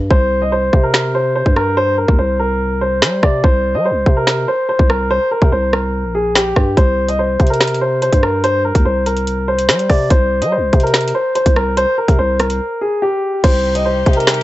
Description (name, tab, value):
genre	hip hop, drill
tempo	144 BPM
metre	4/4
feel	half-time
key	C minor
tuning	A4 = 439 Hz
part	growling 808-style bass	bass	0.0-14.4 s	Bb1 to G3	-19 LUFS	equal	none
part	dark baby grand piano	melody	0.1-14.4 s	G4 to Eb5	-16 LUFS	equal	tape echo
part	drill drum kit	drums	0.1-14.4 s	crash cymbal, finger snaps, hi-hat, kick drum, rim click, snare drum	-13 LUFS	equal	none
part	rich studio string section	sustained chords	13.4-14.4 s	C3 to G4	-26 LUFS	left 2 dB	none
room	little or no reverb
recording	dry, gritty hardware recording, nothing above 8.0 kHz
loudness	-12 LUFS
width	side -16 dB against mid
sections	0.0-13.4 A section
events	hi-hats muted 0.1-6.8; break 12.6-13.4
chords	0.1 C5; 13.4 Cm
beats	| 0.10 0.52 0.94 1.35 | 1.77 2.19 2.60 3.02 | 3.44 3.85 4.27 4.69 | 5.11 5.52 5.94 6.36 | 6.77 7.19 7.61 8.02 | 8.44 8.86 9.27 9.69 | 10.11 10.52 10.94 11.36 | 11.77 12.19 12.61 13.02 | 13.44 13.86 14.27